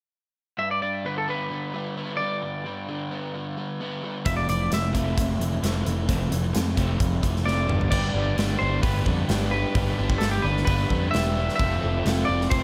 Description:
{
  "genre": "indie rock",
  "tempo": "131 BPM",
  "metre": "4/4",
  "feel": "straight",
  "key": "G mixolydian",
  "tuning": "A4 = 441 Hz",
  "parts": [
    { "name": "clean electric guitar", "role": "melody", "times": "0.6-12.6 s", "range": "G4 to E5", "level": "-31 LUFS", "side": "equal", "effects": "lush chorus, digital delay" },
    { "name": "raw garage guitar", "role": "riff", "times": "0.6-12.6 s", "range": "F2 to D4", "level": "-33 LUFS", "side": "equal", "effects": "overdrive" },
    { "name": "crunchy overdriven guitar", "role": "riff", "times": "4.3-12.6 s", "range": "G2 to A4", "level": "-32 LUFS", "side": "equal", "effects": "subtle chorus" },
    { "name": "overdriven picked electric bass", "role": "bass", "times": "4.3-12.6 s", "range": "E1 to F2", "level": "-29 LUFS", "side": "equal", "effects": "none" },
    { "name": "big rock drum kit", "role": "drums", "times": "4.3-12.6 s", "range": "crash cymbal, hi-hat, kick drum, snare drum, toms", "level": "-29 LUFS", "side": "equal", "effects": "none" }
  ],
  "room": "light reverb",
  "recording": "none",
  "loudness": "-25 LUFS",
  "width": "mono",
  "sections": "0.6-7.9 A section; 7.9-12.6 B section",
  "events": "drum fill 7.5-7.9",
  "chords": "0.6 G; 4.3 Fmaj7; 7.7 G; 11.6 Fmaj7"
}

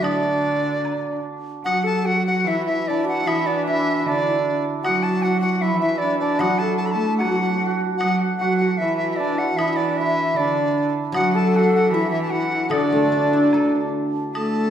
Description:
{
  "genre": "chinese traditional, Chinese chamber ensemble",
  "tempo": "76 BPM",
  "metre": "2/4",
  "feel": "rubato",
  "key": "D gong mode",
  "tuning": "A4 = 436 Hz",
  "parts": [
    { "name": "bright reedy large dizi", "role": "melody", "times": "0.0-14.7 s", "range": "D5 to B5", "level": "-23 LUFS", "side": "equal", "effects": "none" },
    { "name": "breathy bright low xiao", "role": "second line", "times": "0.0-14.7 s", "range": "D4 to A4", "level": "-26 LUFS", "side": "left 4 dB", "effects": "none" },
    { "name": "hammered dulcimer", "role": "second line", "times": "0.0-14.7 s", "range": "B3 to A4", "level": "-25 LUFS", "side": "right 3 dB", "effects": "none" },
    { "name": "rich cello", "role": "second line", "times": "0.0-14.7 s", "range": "D3 to A3", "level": "-25 LUFS", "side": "right 2 dB", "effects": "none" },
    { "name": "guzheng", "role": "accompaniment", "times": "0.0-0.8, 6.4-14.7 s", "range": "A2 to A4", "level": "-24 LUFS", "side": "left 2 dB", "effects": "none" },
    { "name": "woodblock", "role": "percussion", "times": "0.0-14.5 s", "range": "none", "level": "-34 LUFS", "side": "left 1 dB", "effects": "none" }
  ],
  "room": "wet recital hall reverb, RT60 1.4 s",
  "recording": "heard from further back in the room",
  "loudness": "-18 LUFS",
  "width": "side -9 dB against mid",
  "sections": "0.0-1.6 A section; 1.6-14.3 B section",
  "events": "none",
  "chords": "none"
}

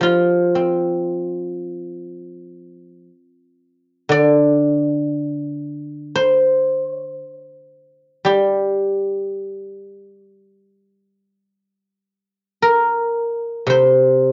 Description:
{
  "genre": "chinese traditional, Chinese solo plucked strings",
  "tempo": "57 BPM",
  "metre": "4/4",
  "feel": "uneven beats, rubato",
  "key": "G yu mode",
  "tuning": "A4 = 441 Hz",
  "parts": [
    { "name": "guzheng", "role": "solo", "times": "0.0-14.3 s", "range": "C3 to D5", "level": "-18 LUFS", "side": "equal", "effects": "none" }
  ],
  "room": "light reverb",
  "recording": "worn, warbling old tape, cassette tape, warbly pitch drift, nothing above 7.6 kHz",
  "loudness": "-18 LUFS",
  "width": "mono",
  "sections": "0.0-14.3 A section",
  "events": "none",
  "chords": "none"
}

